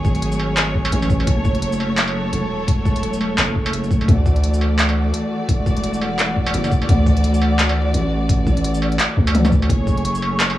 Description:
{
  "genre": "half-time drum and bass",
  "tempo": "171 BPM",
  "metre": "4/4",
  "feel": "swing 58% on 16ths, half-time",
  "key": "F# minor",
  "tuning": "A4 = 439 Hz",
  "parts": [
    { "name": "rich symphonic string section", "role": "sustained chords", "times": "0.0-10.6 s", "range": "E3 to D5", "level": "-23 LUFS", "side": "equal", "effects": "vintage 12-bit sampler grit, sidechain pumping, cassette tape" },
    { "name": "long sustained 808-style bass", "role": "bass", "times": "0.0-10.6 s", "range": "E1 to D2", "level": "-19 LUFS", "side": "equal", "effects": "none" },
    { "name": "electronic kick drum", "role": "drums", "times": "0.0-10.0 s", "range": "none", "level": "-19 LUFS", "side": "equal", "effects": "cassette tape" },
    { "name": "industrial drum kit", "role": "drums", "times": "0.0-10.6 s", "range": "handclaps, hi-hat, shaker, struck metal, toms", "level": "-22 LUFS", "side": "equal", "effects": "cassette tape" },
    { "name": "flickering grainy texture", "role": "texture", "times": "9.9-10.6 s", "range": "C#6", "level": "-25 LUFS", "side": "right 1 dB", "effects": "built-in reverb, cassette tape" }
  ],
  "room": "light reverb, digital ambience",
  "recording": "home recording on cassette, small room ambience",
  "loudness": "-16 LUFS",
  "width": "side -14 dB against mid",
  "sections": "0.0-10.6 A section",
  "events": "drum fill 9.3-9.7",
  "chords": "0.0 F#madd9; 4.1 Dadd9; 9.7 F#madd9"
}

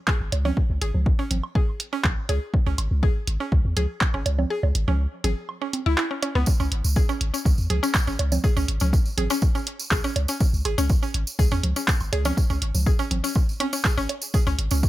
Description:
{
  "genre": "minimal techno",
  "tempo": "122 BPM",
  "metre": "4/4",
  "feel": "straight",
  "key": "C# minor",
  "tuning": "A4 = 440 Hz",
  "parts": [
    { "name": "mallet-like synth pluck", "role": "riff", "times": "0.1-14.8 s", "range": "B3 to G#4", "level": "-29 LUFS", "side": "equal", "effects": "chorus, sidechain pumping, dub echo" },
    { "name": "electronic kick drum", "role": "drums", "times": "0.1-14.9 s", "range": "none", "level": "-21 LUFS", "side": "equal", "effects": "none" },
    { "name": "punchy analog drum machine", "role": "drums", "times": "0.1-14.7 s", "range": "handclaps, hi-hat", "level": "-26 LUFS", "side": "right 1 dB", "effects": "none" },
    { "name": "woodblock, bongos and congas", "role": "percussion", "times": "0.1-14.6 s", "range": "none", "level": "-31 LUFS", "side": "right 3 dB", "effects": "dub echo" },
    { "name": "punchy sub bass", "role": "bass", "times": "0.2-14.9 s", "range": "G#1 to E2", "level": "-24 LUFS", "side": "equal", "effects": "sidechain pumping" },
    { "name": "tambourine", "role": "percussion", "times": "6.5-14.9 s", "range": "none", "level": "-33 LUFS", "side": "right 3 dB", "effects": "none" }
  ],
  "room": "little or no reverb",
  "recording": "none",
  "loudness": "-21 LUFS",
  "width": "side -16 dB against mid",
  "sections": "0.0-14.9 A section",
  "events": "kick drops out 4.5-6.5",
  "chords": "0.0 C#5"
}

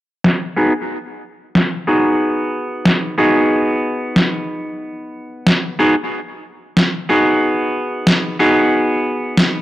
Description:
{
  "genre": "glitch hop",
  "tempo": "92 BPM",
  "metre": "4/4",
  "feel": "swing 57% on 16ths",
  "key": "G# minor pentatonic",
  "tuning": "A4 = 441 Hz",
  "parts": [
    { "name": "electronic snare drum", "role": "drums", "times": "0.2-9.5 s", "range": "none", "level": "-14 LUFS", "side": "equal", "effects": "overdrive, low-pass filter on snare, studio reverb" },
    { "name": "semi-hollow electric guitar", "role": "stabs", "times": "0.6-9.6 s", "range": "B3 to G#4", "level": "-16 LUFS", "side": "equal", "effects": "low-pass filter, analog delay" }
  ],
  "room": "light reverb, digital ambience",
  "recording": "dry, gritty hardware recording, cassette tape",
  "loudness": "-14 LUFS",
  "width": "side -15 dB against mid",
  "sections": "0.0-9.6 A section",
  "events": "filter sweep on drum 0.0-9.6; filter sweep on clean electric guitar 0.0-9.6",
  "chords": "0.0 G#m7"
}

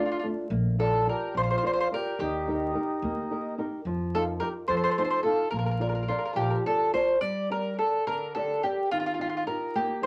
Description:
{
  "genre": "italian folk, Italian serenade",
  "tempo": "72 BPM (dotted quarters)",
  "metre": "6/8",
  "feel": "straight",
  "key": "Bb major",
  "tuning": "A4 = 439 Hz",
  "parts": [
    { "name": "mandolin", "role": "melody", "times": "0.0-10.1 s", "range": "F4 to D5", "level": "-30 LUFS", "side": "equal", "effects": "none" },
    { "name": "mellow accordion", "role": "second line", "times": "0.0-6.6 s", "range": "D4 to A4", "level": "-38 LUFS", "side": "equal", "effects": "none" },
    { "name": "flamenco guitar", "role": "accompaniment", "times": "0.0-10.1 s", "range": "D3 to D5", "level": "-34 LUFS", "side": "equal", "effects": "none" },
    { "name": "upright bass", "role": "bass", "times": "0.5-6.5 s", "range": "Bb1 to F2", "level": "-33 LUFS", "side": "equal", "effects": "none" }
  ],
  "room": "moderate club reverb, RT60 0.6 s",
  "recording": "vinyl crackle",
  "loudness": "-28 LUFS",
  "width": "mono",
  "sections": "0.0-7.2 A section; 7.2-10.1 B section",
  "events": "none",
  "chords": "0.5 Bb; 2.2 Eb; 3.9 F7sus4; 4.7 F7; 5.5 Bb; 7.2 Gm; 8.9 Ebadd9"
}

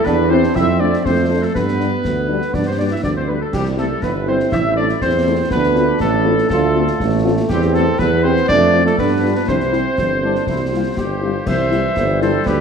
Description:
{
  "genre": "military-style march for wind band",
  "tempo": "121 BPM",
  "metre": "2/4",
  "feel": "straight",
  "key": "C major",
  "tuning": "A4 = 441 Hz",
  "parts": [
    { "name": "mellow cornet", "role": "melody", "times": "0.0-12.6 s", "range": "G4 to E5", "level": "-22 LUFS", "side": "equal", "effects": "none" },
    { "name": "warm euphonium", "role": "second line", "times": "0.0-11.2 s", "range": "G3 to E4", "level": "-23 LUFS", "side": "right 3 dB", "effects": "none" },
    { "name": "warm woodwind section", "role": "second line", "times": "0.0-12.6 s", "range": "G4 to E5", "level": "-23 LUFS", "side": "left 3 dB", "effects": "none" },
    { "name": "clear trombone section", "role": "sustained chords", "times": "0.0-12.6 s", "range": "E3 to G4", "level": "-23 LUFS", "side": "right 3 dB", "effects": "none" },
    { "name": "warm tuba", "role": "bass", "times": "0.1-12.6 s", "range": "G1 to G2", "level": "-19 LUFS", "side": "right 3 dB", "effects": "none" },
    { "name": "concert snare drum, concert bass drum and clash cymbals", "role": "drums", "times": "0.1-12.6 s", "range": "none", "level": "-26 LUFS", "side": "left 2 dB", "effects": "none" },
    { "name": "mellow French horn section", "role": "accompaniment", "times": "0.3-12.3 s", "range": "G3 to G4", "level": "-24 LUFS", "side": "left 8 dB", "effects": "none" }
  ],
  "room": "moderate scoring stage reverb, RT60 1.9 s",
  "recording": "dark, warm production",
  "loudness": "-14 LUFS",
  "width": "side -6 dB against mid",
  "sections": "0.0-11.5 A section; 11.5-12.6 B section",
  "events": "none",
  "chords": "0.0 C/E; 0.6 Dm7/F; 1.5 G; 3.5 C; 4.5 Am; 5.5 Dm7; 7.5 C/E; 8.5 Dm7/F; 9.0 G7; 9.5 C"
}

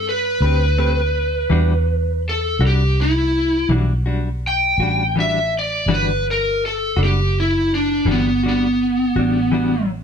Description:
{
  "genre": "slow blues",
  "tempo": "55 BPM (dotted quarters)",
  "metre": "12/8",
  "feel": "straight",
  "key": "E minor",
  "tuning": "A4 = 439 Hz",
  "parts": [
    { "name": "lead guitar through a small cranked amp", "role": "melody", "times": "0.0-9.9 s", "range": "B3 to G5", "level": "-18 LUFS", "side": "equal", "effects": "overdrive" },
    { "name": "vintage muted fingered electric bass", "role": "bass", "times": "0.0-10.0 s", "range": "F#1 to G2", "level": "-20 LUFS", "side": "right 1 dB", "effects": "none" },
    { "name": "direct-recorded clean electric guitar", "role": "accompaniment", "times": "0.4-9.8 s", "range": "E3 to B4", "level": "-24 LUFS", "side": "left 4 dB", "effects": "tremolo" }
  ],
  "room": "light reverb",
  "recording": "band playing live in one room",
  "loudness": "-16 LUFS",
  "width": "side -7 dB against mid",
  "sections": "0.0-10.0 A section",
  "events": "lead electric guitar solo 0.0-10.0",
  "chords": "0.0 Am9; 1.5 Em9"
}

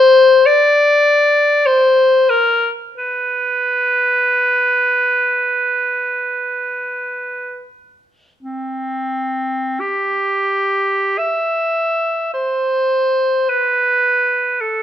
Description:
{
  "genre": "classical, free, expressive piece for unaccompanied clarinet",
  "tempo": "free time",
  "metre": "none",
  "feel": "none",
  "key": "C major",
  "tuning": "A4 = 439 Hz",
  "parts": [
    { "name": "bright clarinet", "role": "solo", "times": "0.0-14.8 s", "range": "C4 to E5", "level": "-14 LUFS", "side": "left 1 dB", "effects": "none" }
  ],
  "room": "moderate large studio reverb, RT60 1.4 s",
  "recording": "minimal, uncompressed stereo recording",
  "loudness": "-14 LUFS",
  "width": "side -10 dB against mid",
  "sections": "0.0-8.4 A section; 8.4-14.8 B section",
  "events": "none",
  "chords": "none"
}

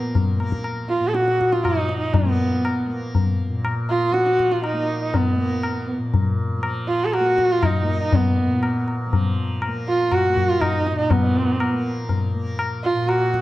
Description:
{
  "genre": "indian classical, Hindustani",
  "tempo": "120 BPM",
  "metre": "3/4",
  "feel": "straight",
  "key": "unclear",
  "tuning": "A4 = 438 Hz",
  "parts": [
    { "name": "tanpura", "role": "drone", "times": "0.0-13.4 s", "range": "Bb2 to Bb3", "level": "-28 LUFS", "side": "equal", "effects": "none" },
    { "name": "tabla", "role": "percussion", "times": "0.2-13.4 s", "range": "none", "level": "-23 LUFS", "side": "left 3 dB", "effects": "none" },
    { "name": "warm sarangi", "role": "melody", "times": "0.9-13.4 s", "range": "Cb4 to A4", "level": "-21 LUFS", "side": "right 1 dB", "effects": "none" }
  ],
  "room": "wet recital hall reverb, RT60 1.6 s",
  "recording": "dark, warm production",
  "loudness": "-18 LUFS",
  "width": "side -16 dB against mid",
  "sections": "0.0-11.1 A section; 11.1-13.4 B section",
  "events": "none",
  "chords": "none"
}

